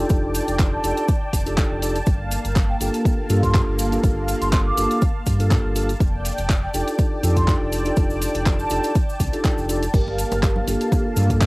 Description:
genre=deep house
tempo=122 BPM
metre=4/4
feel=swing 54% on 16ths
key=G minor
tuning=A4 = 440 Hz
part: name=warm analog pad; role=sustained chords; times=0.0-11.5 s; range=Bb3 to A5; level=-28 LUFS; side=equal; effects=chorus, sidechain pumping, cassette tape
part: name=mellow tine electric piano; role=stabs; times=0.0-11.5 s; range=Bb3 to A4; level=-26 LUFS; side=equal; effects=sidechain pumping, cassette tape, analog delay
part: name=sub bass with octave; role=bass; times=0.0-11.5 s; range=F1 to G2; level=-23 LUFS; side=equal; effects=tube saturation, sidechain pumping
part: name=deep house drum kit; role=drums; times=0.1-11.5 s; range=crash cymbal, handclaps, hi-hat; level=-30 LUFS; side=equal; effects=cassette tape
part: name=electronic kick drum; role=drums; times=0.1-11.5 s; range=none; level=-20 LUFS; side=equal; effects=overdrive, cassette tape
part: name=cabasa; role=percussion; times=0.1-11.5 s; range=none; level=-35 LUFS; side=right 1 dB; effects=none
part: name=mellow hollow concert flute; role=melody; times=0.7-9.0 s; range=G5 to D6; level=-29 LUFS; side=right 1 dB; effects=tape echo
part: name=vibraphone with soft mallets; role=melody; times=9.9-11.5 s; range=Bb3 to Bb4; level=-27 LUFS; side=right 1 dB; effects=none
part: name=congas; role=percussion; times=10.1-11.4 s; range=none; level=-33 LUFS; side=right 1 dB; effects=none
room=light reverb, studio reverb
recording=home recording on cassette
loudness=-18 LUFS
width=side -24 dB against mid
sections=0.0-11.5 A section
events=none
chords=0.0 F13; 2.1 Gm9; 6.0 F13; 9.9 Gm9

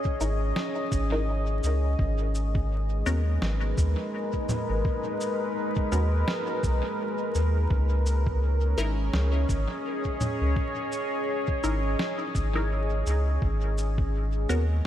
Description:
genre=ambient dub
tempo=84 BPM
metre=4/4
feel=swing 57% on 16ths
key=C# dorian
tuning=A4 = 440 Hz
part: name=deep dark ambient pad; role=sustained chords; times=0.0-14.9 s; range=G#3 to D#5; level=-30 LUFS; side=equal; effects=chorus, built-in reverb
part: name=electronic kick drum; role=drums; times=0.1-14.1 s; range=none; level=-29 LUFS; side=equal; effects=none
part: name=filtered dub chord stab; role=stabs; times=0.2-14.7 s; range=B3 to A#4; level=-36 LUFS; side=left 1 dB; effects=phaser, cassette tape, dub echo
part: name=soft dub sub bass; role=bass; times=0.2-14.8 s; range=G#1 to D#2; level=-25 LUFS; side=equal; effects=none
part: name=electronic cabasa, snare drum and congas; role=drums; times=0.2-14.7 s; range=none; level=-35 LUFS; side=equal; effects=dub echo
room=moderate cathedral reverb, RT60 5.9 s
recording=dreamy mix soaked in reverb, vinyl crackle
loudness=-24 LUFS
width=side -11 dB against mid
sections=0.0-14.9 A section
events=none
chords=0.0 C#m69; 2.0 G#madd9; 7.7 C#m69; 13.4 G#m11

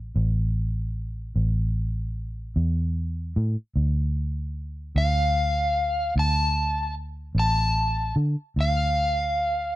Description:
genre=slow blues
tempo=50 BPM (dotted quarters)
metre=12/8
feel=straight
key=unclear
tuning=A4 = 440 Hz
part: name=vintage muted fingered electric bass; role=bass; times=0.0-9.7 s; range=A1 to D3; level=-24 LUFS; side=equal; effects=none
part: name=overdriven slide guitar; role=melody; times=5.0-9.8 s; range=F5 to A5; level=-24 LUFS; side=left 1 dB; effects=none
room=little or no reverb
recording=none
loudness=-23 LUFS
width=side -16 dB against mid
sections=0.0-9.8 A section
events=none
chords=0.0 A5; 3.8 Dm

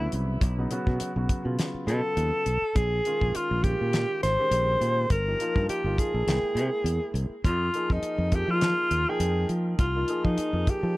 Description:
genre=electric jazz fusion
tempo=102 BPM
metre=4/4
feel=swing 55% on 16ths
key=F minor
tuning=A4 = 441 Hz
part: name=warm alto saxophone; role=melody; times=0.0-11.0 s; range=Eb4 to C5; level=-27 LUFS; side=equal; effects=none
part: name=dark baby grand piano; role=accompaniment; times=0.0-11.0 s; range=C#3 to G5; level=-34 LUFS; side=equal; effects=none
part: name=fingered electric bass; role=bass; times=0.0-10.9 s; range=G1 to F3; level=-28 LUFS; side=equal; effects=none
part: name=damped 70s drum kit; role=drums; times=0.1-10.8 s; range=hi-hat, kick drum, snare drum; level=-27 LUFS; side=equal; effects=none
room=small room ambience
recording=none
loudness=-24 LUFS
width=side -19 dB against mid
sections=0.0-11.0 A section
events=none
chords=0.4 B7sus2; 2.8 Bbm9; 5.1 Fm11/G; 6.3 C7b13; 7.4 Fm11

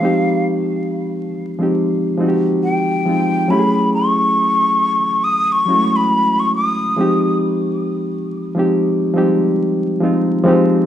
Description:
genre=R&B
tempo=69 BPM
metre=4/4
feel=swing 64% on 16ths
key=unclear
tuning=A4 = 436 Hz
part: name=breathy hollow jazz flute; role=melody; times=0.0-7.4 s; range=F5 to Eb6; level=-16 LUFS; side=left 1 dB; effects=none
part: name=reed electric piano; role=accompaniment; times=0.0-10.9 s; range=F3 to Ab4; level=-16 LUFS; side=equal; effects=none
room=wet studio reverb, RT60 0.6 s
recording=vinyl crackle, studio reverb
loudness=-14 LUFS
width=side -10 dB against mid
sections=0.0-10.4 A section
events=none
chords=0.0 Fm9; 3.5 Gbm9; 7.0 Fm9

